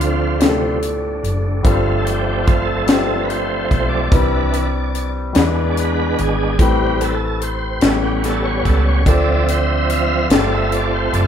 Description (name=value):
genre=slow gospel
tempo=48 BPM (dotted quarters)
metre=6/8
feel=straight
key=unclear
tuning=A4 = 436 Hz
part: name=clear upright piano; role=accompaniment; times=0.0-11.3 s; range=G2 to D5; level=-22 LUFS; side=left 4 dB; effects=none
part: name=bright tonewheel organ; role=sustained chords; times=0.0-11.3 s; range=C3 to F5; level=-20 LUFS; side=right 2 dB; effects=slow rotary speaker, overdrive, chorus vibrato
part: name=hollow-body short-scale fingered electric bass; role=bass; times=0.0-11.3 s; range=F#1 to E2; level=-20 LUFS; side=right 1 dB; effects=none
part: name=tight funk drum kit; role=drums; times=0.0-11.3 s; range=hi-hat, kick drum, snare drum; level=-17 LUFS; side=left 1 dB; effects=none
room=moderate large studio reverb, RT60 1.1 s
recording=band playing live in one room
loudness=-15 LUFS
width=side -9 dB against mid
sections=0.0-11.3 A section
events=tonewheel organ solo 0.0-11.3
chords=0.0 Dm9; 1.6 G9sus4; 4.1 Cmaj9; 5.4 E7; 6.6 Am9; 7.8 A7; 9.1 Dm7; 10.3 G9sus4